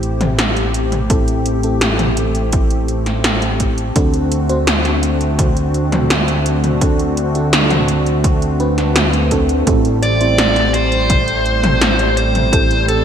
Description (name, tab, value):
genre	synthwave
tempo	84 BPM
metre	4/4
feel	straight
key	A dorian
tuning	A4 = 441 Hz
part	warm analog pad	sustained chords	0.0-13.0 s	D3 to G4	-21 LUFS	left 1 dB	wide subtle chorus
part	FM electric piano with soft pad layer	stabs	0.0-13.0 s	C4 to C5	-22 LUFS	right 1 dB	chorus, ping-pong delay
part	fat analog bass	bass	0.0-13.0 s	A1 to D2	-18 LUFS	equal	none
part	80s electronic pad drums	drums	0.0-13.0 s	hi-hat, snare drum, toms	-18 LUFS	equal	gated reverb on snare and toms, gated reverb
part	electronic kick drum	drums	1.1-12.7 s	none	-17 LUFS	equal	none
part	dark smooth lead guitar	melody	10.0-13.0 s	A4 to D5	-16 LUFS	right 1 dB	overdrive, digital delay
room	moderate lush hall reverb, RT60 2.5 s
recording	bright 1980s-style digital production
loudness	-13 LUFS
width	side -8 dB against mid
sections	0.0-13.0 A section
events	none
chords	0.0 Am7; 4.0 D7; 9.7 Am7